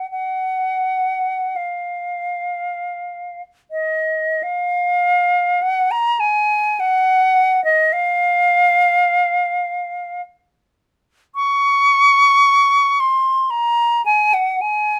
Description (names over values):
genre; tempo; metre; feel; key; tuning
classical, free, expressive piece for unaccompanied flute; 34-57 BPM; 3/4; rubato; unclear; A4 = 445 Hz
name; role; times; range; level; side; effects
silver concert flute; solo; 0.0-15.0 s; Eb5 to Db6; -17 LUFS; equal; none
room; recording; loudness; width
light reverb; none; -17 LUFS; mono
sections
0.0-4.4 A section; 4.4-15.0 B section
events
none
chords
none